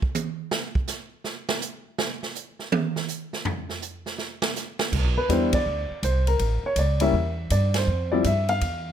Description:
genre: jazz piano trio.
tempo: 163 BPM.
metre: 4/4.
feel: swing 65% on 8ths.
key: C major from 4.9 s.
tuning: A4 = 440 Hz.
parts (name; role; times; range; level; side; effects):
swinging big-band drum kit; drums; 0.0-8.7 s; crash cymbal, hi-hat, kick drum, ride cymbal, snare drum, toms; -28 LUFS; right 3 dB; none.
upright bass; bass; 4.9-8.9 s; G1 to G2; -24 LUFS; right 1 dB; none.
warm grand piano; melody; 5.2-8.9 s; F3 to F5; -24 LUFS; left 2 dB; plate reverb.
room: light reverb.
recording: none.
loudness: -23 LUFS.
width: side -9 dB against mid.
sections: 0.0-4.9 A section; 4.9-8.9 B section.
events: drum solo 0.0-4.9; band accent 5.5, 7.7.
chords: 0.0 N.C.; 4.9 Cmaj9; 6.4 A7b9; 7.9 Dm11 (rootless).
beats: 0.16 | 0.53 0.89 1.26 1.63 | 1.99 2.36 2.73 3.09 | 3.46 3.83 4.19 4.56 | 4.93 5.30 5.67 6.03 | 6.40 6.77 7.14 7.51 | 7.88 8.25 8.62.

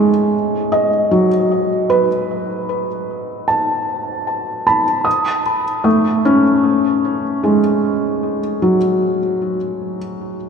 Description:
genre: ambient.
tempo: 76 BPM.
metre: 4/4.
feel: straight.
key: unclear.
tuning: A4 = 441 Hz.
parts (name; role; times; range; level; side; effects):
felt-muted upright piano; solo; 0.0-10.5 s; F#3 to D#6; -14 LUFS; equal; ping-pong delay.
room: wet cathedral reverb, RT60 5.4 s.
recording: none.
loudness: -14 LUFS.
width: side -6 dB against mid.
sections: 0.0-10.5 A section.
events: none.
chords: 0.0 Bsus2.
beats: 0.32 1.11 | 1.90 2.69 3.48 4.27 | 5.06 5.85 6.64 7.43 | 8.22 9.01 9.80.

